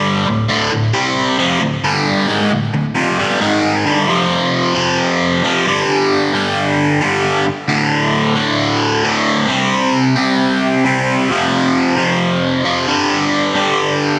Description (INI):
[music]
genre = rock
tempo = 133 BPM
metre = 4/4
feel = straight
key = unclear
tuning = A4 = 440 Hz
[part]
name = cranked stack guitar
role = solo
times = 0.0-14.2 s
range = D2 to C4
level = -15 LUFS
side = equal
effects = overdrive, phaser, digital delay
[sound]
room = wet lush hall reverb, RT60 1.6 s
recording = bright 1980s-style digital production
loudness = -15 LUFS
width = mono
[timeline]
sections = 0.0-4.1 A section; 4.1-14.2 B section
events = none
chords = 0.3 D5; 0.9 C5; 1.4 D5; 1.8 G5; 2.3 D5; 3.4 G#5; 3.9 G5; 4.1 F5; 5.7 G5; 7.7 D5; 9.5 C5; 11.3 F5; 12.9 G5